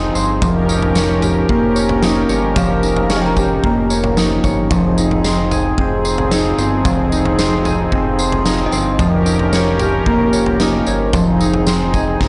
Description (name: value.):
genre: dream pop.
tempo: 112 BPM.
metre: 4/4.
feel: straight.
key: unclear.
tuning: A4 = 441 Hz.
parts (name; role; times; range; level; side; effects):
warm analog pad; sustained chords; 0.0-12.3 s; F3 to Bb4; -21 LUFS; equal; chorus.
mellow electric guitar; arpeggios; 0.0-12.3 s; F3 to Db5; -20 LUFS; equal; lush chorus, analog delay.
fat analog bass; bass; 0.0-12.3 s; F1 to G1; -24 LUFS; equal; none.
huge arena drum kit; drums; 0.2-12.3 s; kick drum, snare drum, tambourine, toms; -22 LUFS; equal; none.
synth chime; texture; 2.6-3.8, 8.7-9.2 s; Eb5 to Bb5; -29 LUFS; equal; ensemble chorus, analog delay.
room: light reverb, studio reverb.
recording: dry, gritty hardware recording, nothing above 11.0 kHz.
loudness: -15 LUFS.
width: mono.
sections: 0.0-12.3 A section.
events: none.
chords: 0.4 Eb7/F; 4.7 Fm7; 9.0 Eb7/F; 11.1 Fm7.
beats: | 0.42 0.96 1.49 2.03 | 2.56 3.10 3.64 4.17 | 4.71 5.24 5.78 6.31 | 6.85 7.39 7.92 8.46 | 8.99 9.53 10.06 10.60 | 11.14 11.67 12.21.